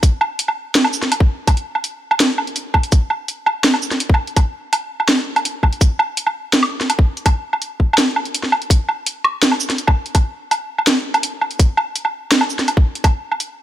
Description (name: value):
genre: drum and bass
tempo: 166 BPM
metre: 4/4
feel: half-time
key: none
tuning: none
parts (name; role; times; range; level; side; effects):
- drum and bass drum kit; drums; 0.0-13.5 s; hi-hat, shaker, snare drum, woodblock; -16 LUFS; right 1 dB; none
- electronic kick drum; drums; 0.0-13.1 s; none; -13 LUFS; equal; none
room: light reverb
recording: none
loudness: -15 LUFS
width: side -12 dB against mid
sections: 0.0-8.7 A section; 8.7-13.6 A section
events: drop 0.0-8.7, 8.7-13.6; break 8.3-8.7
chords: none